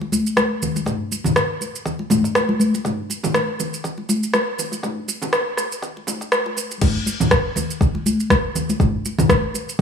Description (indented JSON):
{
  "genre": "house",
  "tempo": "121 BPM",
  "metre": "4/4",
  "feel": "swing 56% on 16ths",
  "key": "none",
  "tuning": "none",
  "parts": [
    { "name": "congas", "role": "percussion", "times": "0.0-9.7 s", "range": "none", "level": "-22 LUFS", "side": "left 1 dB", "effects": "none" },
    { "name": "deep house drum kit", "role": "drums", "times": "0.1-9.8 s", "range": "crash cymbal, rim click, shaker, toms", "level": "-21 LUFS", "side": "equal", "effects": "overdrive" },
    { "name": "electronic kick drum", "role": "drums", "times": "0.4-9.8 s", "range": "none", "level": "-21 LUFS", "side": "left 1 dB", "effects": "overdrive, high-pass filter on kick, high-pass filter on room" }
  ],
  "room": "moderate recital hall reverb, RT60 1.4 s",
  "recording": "high-pass filter, small room ambience",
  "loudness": "-18 LUFS",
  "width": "side -7 dB against mid",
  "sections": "0.0-6.8 A section; 6.8-9.8 B section",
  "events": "build-up 0.0-6.8; drop 6.8-9.8",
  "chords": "none",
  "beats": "0.37 | 0.86 1.36 1.86 2.35 | 2.85 3.34 3.84 4.33 | 4.83 5.33 5.82 6.32 | 6.81 7.31 7.81 8.30 | 8.80 9.29 9.79"
}